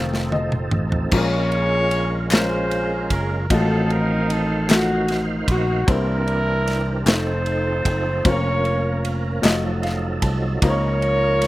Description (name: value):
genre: slow gospel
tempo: 50 BPM (dotted quarters)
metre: 6/8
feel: straight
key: Bb minor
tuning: A4 = 440 Hz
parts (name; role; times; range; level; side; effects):
- warm upright piano; accompaniment; 0.0-11.5 s; A2 to A5; -26 LUFS; left 3 dB; slapback echo
- tonewheel organ; sustained chords; 0.0-11.5 s; Eb3 to F5; -28 LUFS; right 3 dB; fast rotary speaker, overdrive, chorus vibrato
- fingered electric bass; bass; 0.0-11.5 s; F1 to Db2; -23 LUFS; equal; none
- modern studio drum kit; drums; 0.1-11.5 s; crash cymbal, kick drum, ride cymbal, snare drum, toms; -21 LUFS; equal; none
- warm horn section; melody; 1.1-11.5 s; C4 to Db5; -23 LUFS; equal; slapback echo
- group handclap; percussion; 2.3-9.8 s; none; -26 LUFS; left 3 dB; none
room: little or no reverb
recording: recorded outdoors, with no room sound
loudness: -18 LUFS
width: side -17 dB against mid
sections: 0.0-1.1 A section; 1.1-11.5 B section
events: drum fill 0.0-1.1; upright piano solo 0.0-1.1; upright piano fill 9.4-10.6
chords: 0.0 F7; 1.1 Bbm7; 3.5 F7b9/A; 5.9 C9; 7.1 F7; 8.3 Bbm/F; 9.4 F7b9; 10.6 Db69